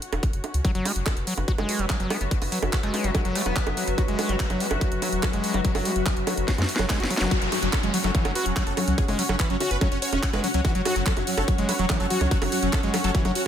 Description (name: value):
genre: psychedelic trance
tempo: 144 BPM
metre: 4/4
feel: straight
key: unclear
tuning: A4 = 440 Hz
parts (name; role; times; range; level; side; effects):
- garage drum kit; drums; 0.0-13.4 s; bongos, handclaps, hi-hat, snare drum; -29 LUFS; right 2 dB; studio reverb
- muted studio string section; texture; 0.0-13.5 s; C#4 to F#5; -33 LUFS; left 3 dB; sidechain pumping
- round analog bass; bass; 0.1-13.3 s; E1 to F#2; -28 LUFS; equal; none
- electronic kick drum; drums; 0.2-13.2 s; none; -24 LUFS; equal; studio reverb
- evolving wavetable pad; sustained chords; 1.0-13.5 s; F#3 to F#4; -32 LUFS; right 1 dB; chorus, built-in reverb, sidechain pumping
- overdriven acid bass; riff; 0.6-13.3 s; E3 to F#4; -29 LUFS; left 1 dB; distortion, auto-pan, sidechain pumping, ping-pong delay
- metallic wobble bass; second line; 2.1-3.9 s; A3 to B3; -38 LUFS; left 4 dB; chorus, sidechain pumping, high-pass filter, dub echo
- zap and downlifter; sound effects; 7.2-10.6 s; none; -32 LUFS; left 1 dB; none
- dense compressed supersaw; melody; 7.3-13.4 s; F#3 to C#5; -29 LUFS; left 1 dB; phaser, sidechain pumping, dub echo
room: light reverb, digital ambience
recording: none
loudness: -22 LUFS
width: side -9 dB against mid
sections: 0.0-7.3 A section; 7.3-13.5 B section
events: fade-in on string section 0.0-7.3; drum fill 6.5-7.3; drop 7.3-13.5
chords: 0.0 F#5